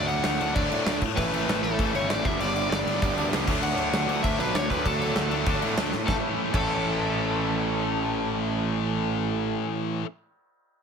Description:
punk rock; 196 BPM; 4/4; straight; A mixolydian; A4 = 441 Hz
biting overdriven guitar; melody; 0.0-9.6 s; A4 to F#5; -31 LUFS; left 1 dB
cranked stack guitar; riff; 0.0-10.1 s; G2 to E4; -31 LUFS; right 11 dB; overdrive
tight distorted guitar; riff; 0.0-10.1 s; G2 to D4; -31 LUFS; left 14 dB; distortion
fuzz picked electric bass; bass; 0.0-9.5 s; G1 to A2; -31 LUFS; equal; overdrive
big rock drum kit; drums; 0.1-6.6 s; crash cymbal, kick drum, snare drum; -29 LUFS; equal
cranked stack guitar; riff; 1.2-10.1 s; G2 to E4; -31 LUFS; equal; overdrive
light reverb; -23 LUFS; side -6 dB against mid
0.0-6.1 A section; 6.1-8.5 B section
drum fill 5.9
0.0 D; 1.2 A; 2.2 G; 3.5 D; 6.1 A
0.25 0.56 0.86 | 1.17 1.48 1.78 2.09 | 2.40 2.71 3.01 3.32 | 3.63 3.93 4.24 4.55 | 4.85 5.16 5.46 5.77 | 6.08 6.38 6.69 7.00 | 7.30 7.61 7.91 8.22

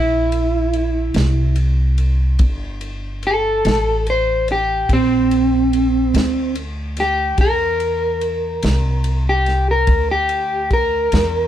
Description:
slow blues; 48 BPM (dotted quarters); 12/8; straight; C mixolydian; A4 = 438 Hz
electric guitar through a small old amp; melody; 0.0-11.5 s; C4 to C5; -17 LUFS; equal; warbly pitch drift
upright bass; bass; 0.0-11.5 s; G1 to E2; -19 LUFS; equal
warm soul drum kit; drums; 0.3-11.3 s; kick drum, ride cymbal, snare drum; -24 LUFS; equal
light reverb; band playing live in one room; -15 LUFS; side -11 dB against mid
0.0-11.5 A section
clean electric guitar solo 0.0-11.5
0.0 C9
1.16 | 2.40 3.65 4.90 6.15 | 7.39 8.64 9.89 11.13

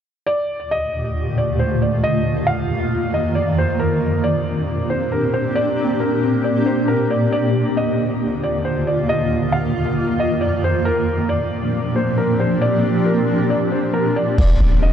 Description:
hip hop, atmospheric cloud-rap; 136 BPM; 4/4; half-time; Bb major; A4 = 440 Hz
felt-muted upright piano; melody; 0.3-14.9 s; Bb4 to F5; -22 LUFS; equal; low-pass filter, tape echo
granular cloud pad; sustained chords; 0.8-14.9 s; Eb2 to G4; -18 LUFS; equal; built-in reverb, sidechain pumping
warm 808-style bass; bass; 14.4-14.9 s; Eb1; -15 LUFS; equal
trip hop sampler-style drum kit; drums; 14.4-14.5 s; crash cymbal, kick drum; -18 LUFS; equal
impact; sound effects; 14.4-14.9 s; -24 LUFS; equal
light reverb, digital ambience; dark, warm production; -16 LUFS; side -9 dB against mid
0.3-14.4 A section
hi-hats muted 14.4-14.9; impact 14.4-14.9
0.3 Ebmaj9#11; 2.0 F7sus4; 3.8 Bb69; 7.3 Ebmaj9; 9.1 F7sus4; 10.9 Bb69; 14.4 Ebmaj9#11
| 0.27 0.71 1.15 1.59 | 2.03 2.47 2.91 3.35 | 3.80 4.24 4.68 5.12 | 5.56 6.00 6.44 6.88 | 7.33 7.77 8.21 8.65 | 9.09 9.53 9.97 10.41 | 10.86 11.30 11.74 12.18 | 12.62 13.06 13.50 13.94 | 14.38 14.83

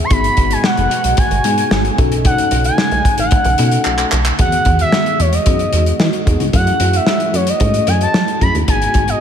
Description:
early-eighties boogie funk; 112 BPM; 4/4; straight; E major; A4 = 439 Hz
expressive portamento lead; melody; 0.0-9.2 s; C#5 to C#6; -17 LUFS; equal; chorus, slapback echo
warm analog pad; sustained chords; 0.0-9.2 s; B2 to F#4; -25 LUFS; equal; chorus
plucky analog bass; bass; 0.0-9.1 s; F#1 to F#3; -17 LUFS; equal
mellow tine electric piano; accompaniment; 0.1-9.2 s; D#3 to A4; -23 LUFS; left 4 dB; medium stereo tremolo
modern studio drum kit; drums; 0.1-9.2 s; handclaps, hi-hat, kick drum, snare drum; -16 LUFS; equal
moderate lush hall reverb, RT60 2.6 s; big arena sound; -12 LUFS; side -8 dB against mid
0.0-4.4 A section; 4.4-9.2 B section
drum fill 3.9-4.4
0.1 G#m7; 2.0 B9; 4.4 Emaj9; 6.5 F#m7; 8.7 G#m7
| 0.11 0.64 1.18 1.72 | 2.25 2.79 3.32 3.86 | 4.39 4.93 5.47 6.00 | 6.54 7.07 7.61 8.14 | 8.68

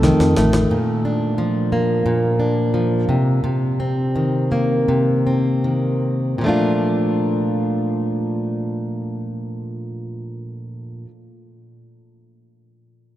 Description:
acoustic pop; 76-90 BPM; 4/4; straight; Bb major; A4 = 439 Hz
fingerpicked plugged-in steel-string acoustic guitar; accompaniment; 0.0-11.1 s; F2 to A4; -18 LUFS; equal
fingered electric bass; bass; 0.0-0.6 s; A1 to F2; -19 LUFS; equal
electronic snare drum; drums; 0.0-0.7 s; -30 LUFS; equal
wet cathedral reverb, RT60 5.2 s; in a vast, echoing space; -17 LUFS; side -13 dB against mid
0.7-6.4 A section; 6.4-9.6 B section
drum fill 0.0-0.7; slowing down 0.7-6.4
0.0 F7; 0.7 Bb; 3.1 Cm7; 6.4 Bbmaj7
0.03 | 0.70 1.37 2.05 2.73 | 3.43 4.15 4.88 5.63 | 6.41 7.20 7.99 8.77

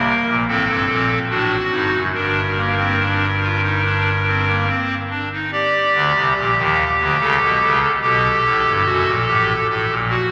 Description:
classical, baroque-style 3-part fugue for pipe organ; 72 BPM; 4/4; straight; G minor; A4 = 441 Hz
pipe organ, clarinet reed; solo; 0.0-10.3 s; F#1 to D5; -17 LUFS; equal
wet church reverb, RT60 3.7 s; -17 LUFS; mono
0.0-5.5 A section; 5.5-10.3 B section
0.5 D; 2.2 Gm; 7.2 A7; 8.9 F#m
0.48 1.31 | 2.15 3.00 3.84 4.69 | 5.54 6.37 7.21 8.03 | 8.86 9.68

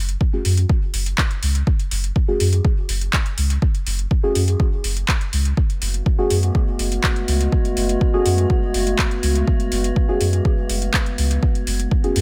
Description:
dub techno; 123 BPM; 4/4; straight; F# minor; A4 = 436 Hz
soft dub sub bass; bass; 0.0-12.2 s; F#1 to F#2; -22 LUFS; equal; sidechain pumping
deep house drum kit; drums; 0.1-12.2 s; handclaps, hi-hat; -27 LUFS; equal; overdrive
electronic kick drum; drums; 0.2-12.0 s; -21 LUFS; equal; overdrive
deep mellow chord stab; stabs; 0.3-12.2 s; A3 to G#4; -26 LUFS; equal; chorus, phaser, vintage 12-bit sampler grit, sidechain pumping, dub echo
warbly tape-like pad; sustained chords; 6.0-12.2 s; G#3 to F#4; -28 LUFS; equal; chorus, built-in reverb, sidechain pumping
metallic inharmonic drone; texture; 6.0-12.2 s; B3; -32 LUFS; equal; chorus, built-in reverb, sidechain pumping
digital ambience; -20 LUFS; mono
0.0-12.2 A section
0.0 F#madd9
0.21 0.69 1.18 | 1.67 2.16 2.65 3.13 | 3.62 4.11 4.60 5.08 | 5.57 6.06 6.55 7.04 | 7.52 8.01 8.50 8.99 | 9.47 9.96 10.45 10.94 | 11.43 11.91

